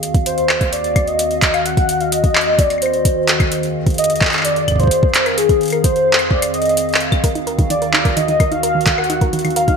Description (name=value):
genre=IDM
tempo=129 BPM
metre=4/4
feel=straight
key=Eb melodic minor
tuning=A4 = 440 Hz
part: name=warbly tape-like pad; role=sustained chords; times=0.0-9.8 s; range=Eb2 to F5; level=-22 LUFS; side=equal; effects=chorus, built-in reverb, vintage 12-bit sampler grit
part: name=electro analog drum machine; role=drums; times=0.0-9.8 s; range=claves, handclaps, hi-hat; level=-18 LUFS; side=equal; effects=gated reverb
part: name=electronic kick drum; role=drums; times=0.1-9.8 s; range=none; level=-16 LUFS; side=equal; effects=overdrive
part: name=warm velvety synth lead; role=melody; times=0.3-9.8 s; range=Ab4 to Gb5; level=-17 LUFS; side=left 1 dB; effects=chorus, digital delay
part: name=soft round pluck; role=arpeggios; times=7.2-9.7 s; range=Eb3 to Bb4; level=-22 LUFS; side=right 2 dB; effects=chorus, digital delay
room=wet lush hall reverb, RT60 1.6 s, digital ambience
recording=bright 1980s-style digital production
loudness=-13 LUFS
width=side -6 dB against mid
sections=0.0-9.8 A section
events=none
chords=0.0 Ebm6; 3.5 Fm7; 7.2 Ebm6